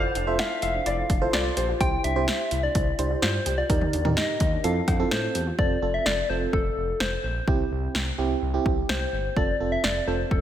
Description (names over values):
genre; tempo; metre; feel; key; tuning
synth-pop; 127 BPM; 4/4; straight; F major; A4 = 442 Hz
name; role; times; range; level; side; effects
soft struck synth lead; melody; 0.0-10.4 s; A4 to G5; -28 LUFS; left 2 dB; chorus, tremolo, digital delay, slapback echo
FM electric piano with tremolo; accompaniment; 0.0-10.4 s; C4 to D5; -30 LUFS; right 6 dB; slapback echo
soft round pluck; arpeggios; 0.0-5.5 s; C4 to G4; -34 LUFS; left 2 dB; chorus, digital delay, slapback echo
smooth gliding synth bass; bass; 0.0-10.4 s; F1 to A2; -29 LUFS; equal; none
punchy analog drum machine; drums; 0.2-10.4 s; cowbell, hi-hat, kick drum, snare drum, toms; -27 LUFS; equal; none
warm concert grand piano; second line; 0.3-1.7 s; C5 to F5; -29 LUFS; left 2 dB; digital delay, slapback echo
room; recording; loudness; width
moderate lush hall reverb, RT60 2.4 s; big arena sound; -22 LUFS; side -10 dB against mid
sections
0.0-5.6 A section; 5.6-10.4 B section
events
none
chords
0.0 Fmaj7; 1.8 C; 3.7 Ebmaj7; 4.6 Fadd9; 5.6 F; 7.5 C; 9.4 F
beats
0.39 0.86 1.33 | 1.81 2.28 2.75 3.22 | 3.70 4.17 4.64 5.11 | 5.59 6.06 6.53 7.00 | 7.48 7.95 8.42 8.89 | 9.37 9.84 10.31